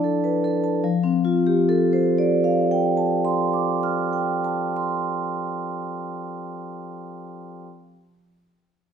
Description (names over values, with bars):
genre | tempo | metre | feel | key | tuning
classical, contemporary piece for solo vibraphone | 52 BPM (dotted quarters) | 6/8 | rubato | F major | A4 = 440 Hz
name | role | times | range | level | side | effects
vibraphone with medium hard mallets | solo | 0.0-7.7 s | F3 to F6 | -20 LUFS | equal | none
room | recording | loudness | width
wet recital hall reverb, RT60 1.4 s | minimal, uncompressed stereo recording | -20 LUFS | side -7 dB against mid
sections
0.8-5.4 A section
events
none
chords
0.0 F6; 0.8 F69